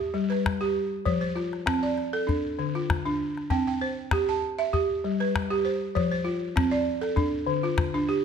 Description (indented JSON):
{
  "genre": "west african traditional, West African string and xylophone music",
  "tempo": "98 BPM",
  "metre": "4/4",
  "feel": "straight",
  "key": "unclear",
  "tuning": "A4 = 440 Hz",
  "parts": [
    { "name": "balafon", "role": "arpeggios", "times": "0.0-8.2 s", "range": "D3 to A5", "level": "-25 LUFS", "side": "right 1 dB", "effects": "none" },
    { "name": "calabash", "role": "percussion", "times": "0.3-7.9 s", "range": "none", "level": "-29 LUFS", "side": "left 3 dB", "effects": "none" }
  ],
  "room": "moderate recital hall reverb, RT60 1.5 s",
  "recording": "none",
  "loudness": "-24 LUFS",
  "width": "side -7 dB against mid",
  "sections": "0.0-3.5 A section; 3.5-8.2 B section",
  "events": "none",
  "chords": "0.0 G; 1.1 F; 2.3 Dm; 3.5 C5; 4.7 G; 6.0 F; 7.2 Dm"
}